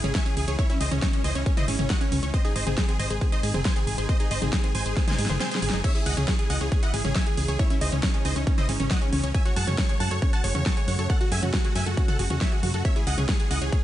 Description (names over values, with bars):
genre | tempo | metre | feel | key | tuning
uplifting trance | 137 BPM | 4/4 | straight | C# harmonic minor | A4 = 437 Hz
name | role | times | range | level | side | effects
big supersaw lead | melody | 0.0-13.8 s | C#4 to C#6 | -31 LUFS | right 1 dB | sidechain pumping, ping-pong delay
wide unison pluck | second line | 0.0-13.8 s | C#4 to C#6 | -36 LUFS | equal | sidechain pumping
lush unison pad | sustained chords | 0.0-13.8 s | B#2 to F#4 | -36 LUFS | equal | chorus, sidechain pumping
analog pluck | arpeggios | 0.0-13.8 s | B#3 to C#6 | -35 LUFS | right 3 dB | chorus, sidechain pumping, ping-pong delay
solid FM bass | bass | 0.0-13.7 s | F#1 to G#2 | -27 LUFS | equal | sidechain pumping
big-room dance drum kit | drums | 0.0-13.8 s | crash cymbal, hi-hat, snare drum, toms | -30 LUFS | left 1 dB | none
electronic kick drum | drums | 0.1-13.8 s | none | -24 LUFS | equal | none
room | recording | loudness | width
little or no reverb | nothing above 10.4 kHz | -22 LUFS | side -13 dB against mid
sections
0.0-13.8 A section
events
drum fill 5.0-5.8; kick drops out 5.4-5.8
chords
0.0 C#m; 2.3 G#; 5.8 C#m; 9.3 F#madd9; 12.8 C#m